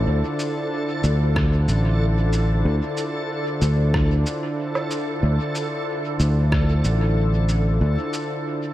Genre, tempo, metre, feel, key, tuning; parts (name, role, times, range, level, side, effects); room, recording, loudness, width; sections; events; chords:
ambient dub; 93 BPM; 4/4; straight; D minor; A4 = 440 Hz
warm analog pad; sustained chords; 0.0-8.7 s; D3 to C5; -26 LUFS; equal; chorus
fingered electric bass; bass; 0.0-8.0 s; A1 to D2; -18 LUFS; equal; tube saturation
backwards swelling texture; texture; 0.0-8.7 s; A4; -30 LUFS; left 2 dB; built-in reverb
electronic cabasa, rim click and woodblock; drums; 0.4-8.3 s; -33 LUFS; right 1 dB; studio reverb, dub echo
electronic kick drum; drums; 1.4-6.7 s; -24 LUFS; equal; studio reverb
light reverb; vinyl crackle; -19 LUFS; side -14 dB against mid
0.0-8.7 A section
0.0 Dm7